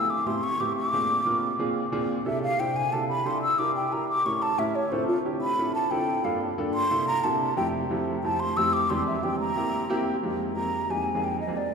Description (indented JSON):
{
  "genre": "jazz",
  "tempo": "180 BPM",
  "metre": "4/4",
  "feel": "straight",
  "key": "unclear",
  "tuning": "A4 = 439 Hz",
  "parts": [
    { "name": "mellow hollow concert flute", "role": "melody", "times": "0.0-11.7 s", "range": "F4 to E6", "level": "-26 LUFS", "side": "equal", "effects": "none" },
    { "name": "warm upright piano", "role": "accompaniment", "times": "0.0-11.6 s", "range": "E2 to C5", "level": "-28 LUFS", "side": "right 1 dB", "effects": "none" }
  ],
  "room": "wet cathedral reverb, RT60 5.4 s",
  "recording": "recorded in a church or concert hall",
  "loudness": "-24 LUFS",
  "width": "side -5 dB against mid",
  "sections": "0.0-10.2 A section; 10.2-11.7 B section",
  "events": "flute solo 0.0-10.2",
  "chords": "0.0 Am7; 0.9 Bb9; 2.3 C6; 3.6 Em7b5; 4.3 A7b9; 4.9 Dm7; 6.2 Gm7; 6.9 C13; 7.6 Fmaj9; 8.9 E7alt; 9.6 C7; 10.2 Fm11",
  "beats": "0.27 0.60 | 0.93 1.26 1.59 1.93 | 2.26 2.59 2.92 3.26 | 3.59 3.92 4.25 4.59 | 4.92 5.25 5.58 5.92 | 6.25 6.58 6.91 7.25 | 7.58 7.91 8.24 8.57 | 8.90 9.24 9.57 9.90 | 10.23 10.57 10.90 11.23 | 11.57"
}